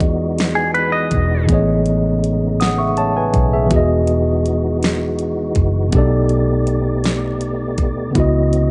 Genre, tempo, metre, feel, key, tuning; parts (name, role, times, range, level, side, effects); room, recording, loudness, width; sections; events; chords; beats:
slow six-eight R&B; 54 BPM (dotted quarters); 6/8; straight; A4 = 440 Hz
mellow tine electric piano; accompaniment; 0.0-8.7 s; A2 to D#6; -20 LUFS; equal
percussive tonewheel organ; sustained chords; 0.0-8.7 s; C#3 to D#5; -28 LUFS; equal; chorus vibrato, fast rotary speaker
vintage muted fingered electric bass; bass; 0.0-8.7 s; E1 to E2; -22 LUFS; equal
smooth R&B drum kit; drums; 0.0-8.7 s; hi-hat, kick drum, snare drum; -22 LUFS; equal
semi-hollow electric guitar; second line; 0.6-1.5 s; G#4 to D#5; -21 LUFS; equal; spring reverb
digital ambience; nothing above 10.5 kHz; -17 LUFS; mono
0.0-8.7 A section
0.0 Emaj9; 1.5 Amaj9#11; 3.7 Emaj9; 5.9 B7alt; 8.2 C#m11
0.37 | 1.49 2.60 | 3.71 4.82 | 5.93 7.04 | 8.15